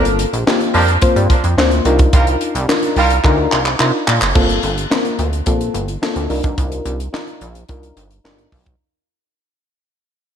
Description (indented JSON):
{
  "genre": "early-eighties boogie funk",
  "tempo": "108 BPM",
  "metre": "4/4",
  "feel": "straight",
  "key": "unclear",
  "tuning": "A4 = 440 Hz",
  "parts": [
    { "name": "warm horn section", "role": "second line", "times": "0.0-3.1 s", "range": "F3 to Bb4", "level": "-20 LUFS", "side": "right 3 dB", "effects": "tape echo, slapback echo" },
    { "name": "mellow FM electric piano", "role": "accompaniment", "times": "0.0-8.6 s", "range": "Bb3 to C5", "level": "-19 LUFS", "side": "left 3 dB", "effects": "chorus, slapback echo" },
    { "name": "chorused synth bass", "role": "bass", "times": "0.0-8.8 s", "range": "F#1 to C3", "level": "-18 LUFS", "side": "right 1 dB", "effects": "none" },
    { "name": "tight funk drum kit", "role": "drums", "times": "0.1-8.8 s", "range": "crash cymbal, handclaps, hi-hat, kick drum, snare drum", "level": "-17 LUFS", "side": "equal", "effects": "none" }
  ],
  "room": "moderate recital hall reverb, RT60 1.4 s, small room ambience",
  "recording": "big arena sound",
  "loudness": "-13 LUFS",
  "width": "side -8 dB against mid",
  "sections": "0.0-4.4 A section; 4.4-8.8 B section",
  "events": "drum fill 3.2-4.4; fade-out 4.4-8.8",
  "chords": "0.0 Gm11; 1.9 Cm11; 4.4 Gm11; 6.3 Cm11"
}